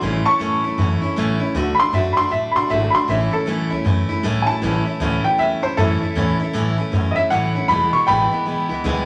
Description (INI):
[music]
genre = rock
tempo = 156 BPM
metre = 4/4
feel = swing 62% on 8ths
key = A major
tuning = A4 = 439 Hz
[part]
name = warm upright piano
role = melody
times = 0.0-9.1 s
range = E4 to C#6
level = -22 LUFS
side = equal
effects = none
[part]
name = picked steel-string acoustic guitar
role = accompaniment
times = 0.0-9.1 s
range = E2 to F#4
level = -24 LUFS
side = equal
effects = none
[part]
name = upright bass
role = bass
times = 0.0-9.0 s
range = E1 to B2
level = -26 LUFS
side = equal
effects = none
[sound]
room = wet large studio reverb, RT60 0.8 s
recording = none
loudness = -19 LUFS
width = mono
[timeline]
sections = 0.0-9.1 A section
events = upright piano solo 0.0-9.1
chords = 0.0 A; 1.6 D; 3.1 A; 7.7 E